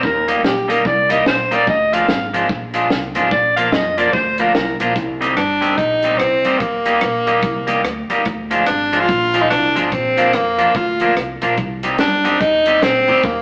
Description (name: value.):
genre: ska.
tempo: 145 BPM.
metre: 4/4.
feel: swing 62% on 8ths.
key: C minor.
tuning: A4 = 441 Hz.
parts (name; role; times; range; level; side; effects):
warm alto saxophone; melody; 0.0-4.8 s; G4 to F5; -19 LUFS; equal; none.
upright bass; bass; 0.0-13.4 s; G1 to F2; -29 LUFS; equal; none.
compact cocktail drum kit; drums; 0.0-13.4 s; hi-hat, kick drum, rim click, snare drum; -25 LUFS; equal; tape echo.
electric guitar at the edge of break-up; accompaniment; 0.3-13.2 s; F3 to G4; -21 LUFS; equal; none.
bright tenor saxophone; melody; 5.4-13.4 s; Bb3 to F4; -18 LUFS; equal; none.
room: wet stone room reverb, RT60 1.1 s.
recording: band playing live in one room, AM radio sound.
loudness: -16 LUFS.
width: mono.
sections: 0.0-5.0 A section; 5.0-13.4 B section.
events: alto saxophone solo 0.0-5.0.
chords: 0.0 Eb; 1.7 Ddim; 3.3 Bb; 5.0 Cm; 6.6 Eb; 8.3 Ddim; 9.9 Bb; 11.6 Cm.